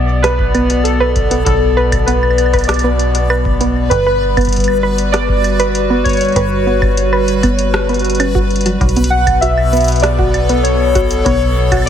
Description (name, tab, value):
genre	IDM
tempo	98 BPM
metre	4/4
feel	straight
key	B minor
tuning	A4 = 440 Hz
part	warbly lo-fi synth keys	melody	0.0-11.9 s	A4 to F#5	-17 LUFS	left 1 dB	chorus, phaser, ping-pong delay
part	hollow soft pad	sustained chords	0.0-11.9 s	B2 to D5	-19 LUFS	left 1 dB	chorus, vintage 12-bit sampler grit
part	metallic FM bass	bass	0.0-11.9 s	G1 to B1	-17 LUFS	equal	none
part	backwards swelling texture	texture	1.3-11.9 s	B4	-28 LUFS	equal	built-in reverb
part	warbly dusty pluck	arpeggios	0.2-11.8 s	F#3 to B4	-19 LUFS	right 2 dB	chorus, digital delay
part	booming analog drum machine	drums	0.2-11.9 s	hi-hat, rim click, woodblock	-22 LUFS	equal	ping-pong delay
part	electronic kick drum	drums	0.4-11.8 s	none	-19 LUFS	equal	none
room	light reverb, digital ambience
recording	heavily compressed radio sound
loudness	-11 LUFS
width	side -9 dB against mid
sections	0.0-11.9 A section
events	none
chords	0.0 Bm7; 3.9 Gmaj7; 8.8 Bm7